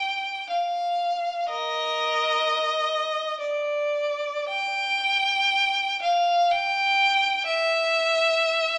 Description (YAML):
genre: classical, free, expressive piece for unaccompanied violin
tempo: 52-63 BPM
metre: 3/4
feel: rubato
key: unclear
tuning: A4 = 440 Hz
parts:
  - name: clear violin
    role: solo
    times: 0.0-8.8 s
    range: Bb4 to G5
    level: -20 LUFS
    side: equal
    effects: none
room: moderate recital hall reverb, RT60 1.5 s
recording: small speaker sound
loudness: -20 LUFS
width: side -23 dB against mid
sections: 0.0-8.8 A section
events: none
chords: none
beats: 0.51 | 1.49 2.45 3.42 | 4.51 5.53 6.52 | 7.48 8.46